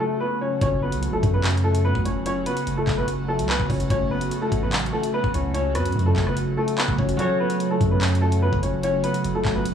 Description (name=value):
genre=hip hop, drill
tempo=146 BPM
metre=4/4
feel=half-time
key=F# minor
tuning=A4 = 435 Hz
part: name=warm upright piano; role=melody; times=0.0-9.6 s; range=A3 to C#5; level=-25 LUFS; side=left 1 dB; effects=tape echo
part: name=airy breathy pad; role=sustained chords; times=0.0-9.7 s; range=C#3 to F#4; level=-28 LUFS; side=right 1 dB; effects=chorus, phaser
part: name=long sustained 808-style bass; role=bass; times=0.6-9.7 s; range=F#1 to F#2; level=-24 LUFS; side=equal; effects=none
part: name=drill drum kit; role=drums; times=0.6-9.7 s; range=handclaps, hi-hat, kick drum, rim click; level=-26 LUFS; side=equal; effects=none
part: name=concert harp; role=accompaniment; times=7.2-9.7 s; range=F#3 to C#5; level=-26 LUFS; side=right 3 dB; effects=none
room=digital ambience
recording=dry, gritty hardware recording, cassette tape, small room reverb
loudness=-20 LUFS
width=side -8 dB against mid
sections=0.6-9.7 A section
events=break 0.0-0.6; kick muted 7.2-7.6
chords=0.0 F#m